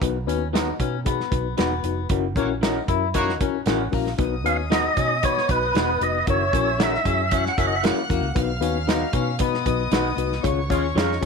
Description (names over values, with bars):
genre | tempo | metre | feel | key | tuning
uptempo 1960s-style soul | 115 BPM | 4/4 | straight | unclear | A4 = 440 Hz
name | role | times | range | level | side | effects
mellow reed electric piano | accompaniment | 0.0-11.3 s | B3 to C#5 | -26 LUFS | left 14 dB | fast tremolo
vintage muted fingered electric bass | bass | 0.0-11.3 s | E1 to B2 | -28 LUFS | right 2 dB | none
natural country drum kit | drums | 0.0-11.3 s | hi-hat, kick drum, snare drum | -26 LUFS | right 2 dB | none
clean electric guitar | riff | 0.3-11.2 s | A#3 to E4 | -30 LUFS | left 13 dB | none
electric guitar through a small old amp | stabs | 0.5-11.1 s | D#4 to F#5 | -32 LUFS | right 14 dB | tape echo
warm horn section | second line | 2.4-3.3, 10.7-10.8 s | G#3 to C#5 | -28 LUFS | right 2 dB | none
warm studio violin section | second line | 4.2-11.3 s | C#5 to F#6 | -31 LUFS | left 1 dB | none
tonewheel organ | melody | 4.5-7.8 s | B4 to F#5 | -22 LUFS | right 2 dB | overdrive, fast rotary speaker
room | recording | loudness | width
light reverb, studio reverb | 1960s-style stereo with parts hard left and right | -20 LUFS | side -5 dB against mid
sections
0.0-11.3 A section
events
band accent 2.1-4.2, 10.4-11.3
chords
0.0 B; 2.1 F#7; 4.2 B; 6.3 F#7; 8.4 B; 10.4 C#